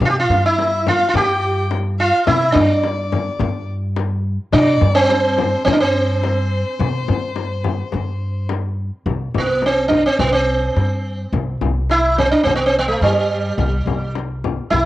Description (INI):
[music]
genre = Arabic maqam ensemble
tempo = 106 BPM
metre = 4/4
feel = straight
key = C maqam ajam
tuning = A4 = 435 Hz
[part]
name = clear violin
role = second line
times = 0.0-8.5 s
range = C5 to G5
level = -27 LUFS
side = left 6 dB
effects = cassette tape
[part]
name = upright bass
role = bass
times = 0.0-14.9 s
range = C2 to C3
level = -21 LUFS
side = equal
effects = none
[part]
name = frame drum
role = percussion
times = 0.0-14.8 s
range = none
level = -24 LUFS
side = left 5 dB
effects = none
[part]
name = sitar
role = melody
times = 0.1-14.8 s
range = G3 to G4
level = -16 LUFS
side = right 2 dB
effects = cassette tape
[sound]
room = light reverb, small room ambience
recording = home recording on cassette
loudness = -15 LUFS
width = side -15 dB against mid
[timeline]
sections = 0.0-9.1 A section; 9.1-14.9 B section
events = none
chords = none